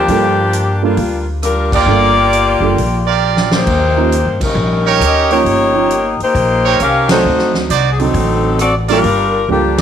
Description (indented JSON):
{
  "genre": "jazz, big band swing",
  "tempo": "134 BPM",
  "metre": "4/4",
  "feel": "swing 66% on 8ths",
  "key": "G minor",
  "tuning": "A4 = 440 Hz",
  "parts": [
    { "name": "clear saxophone section", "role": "melody", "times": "0.0-9.8 s", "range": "F3 to F5", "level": "-14 LUFS", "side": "left 3 dB", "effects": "none" },
    { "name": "brilliant trumpet section", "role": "stabs", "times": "0.0-9.8 s", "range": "Eb4 to D5", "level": "-18 LUFS", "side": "right 10 dB", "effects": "none" },
    { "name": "upright bass", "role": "bass", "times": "0.0-9.8 s", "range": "F#1 to G2", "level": "-18 LUFS", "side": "equal", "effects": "none" },
    { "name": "dark concert grand piano", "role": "accompaniment", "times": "0.1-9.8 s", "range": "D3 to D5", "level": "-19 LUFS", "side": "right 10 dB", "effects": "none" },
    { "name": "swinging big-band drum kit", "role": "drums", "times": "0.1-9.8 s", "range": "crash cymbal, hi-hat, kick drum, ride cymbal, rim click, snare drum", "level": "-21 LUFS", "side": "equal", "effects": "none" }
  ],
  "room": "light reverb, studio reverb",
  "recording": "1960s-style stereo",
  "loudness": "-11 LUFS",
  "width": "side -9 dB against mid",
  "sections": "0.0-9.8 A section",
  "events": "band accent 1.6, 4.3, 7.0; drum fill 3.2-3.7, 9.5-9.8",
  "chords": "0.1 Gm7; 3.7 Eb7; 7.2 D7b9; 9.0 Gm7"
}